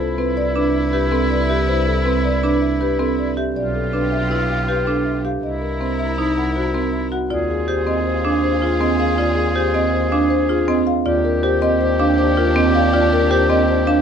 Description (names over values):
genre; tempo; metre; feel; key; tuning
classical, minimalist pattern music; 160 BPM; 5/4; straight; C major; A4 = 440 Hz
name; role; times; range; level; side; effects
marimba with soft mallets; melody; 0.0-14.0 s; Ab4 to F#5; -22 LUFS; left 6 dB; none
clear oboe; second line; 0.0-14.0 s; E4 to Ab4; -25 LUFS; equal; none
rich studio violin section; sustained chords; 0.0-14.0 s; D4 to B4; -29 LUFS; left 3 dB; none
clear double bass; bass; 0.0-14.0 s; B1 to Eb2; -23 LUFS; right 1 dB; none
marimba with medium hard mallets; arpeggios; 0.2-14.0 s; C4 to G4; -20 LUFS; right 4 dB; none
room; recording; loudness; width
little or no reverb; dark, warm production, nothing above 10.4 kHz; -16 LUFS; side -7 dB against mid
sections
0.0-7.3 A section; 7.3-14.0 B section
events
none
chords
0.0 Cmaj9; 3.6 G13/B; 5.4 C7#11; 7.3 Fm9/Eb; 11.1 Ebmaj9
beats
0.18 0.56 0.93 1.31 | 1.68 2.06 2.43 2.81 3.18 | 3.56 3.93 4.31 4.68 5.06 | 5.43 5.81 6.18 6.56 6.93 | 7.31 7.68 8.06 8.43 8.81 | 9.18 9.56 9.93 10.31 10.68 | 11.06 11.43 11.81 12.18 12.56 | 12.93 13.31 13.68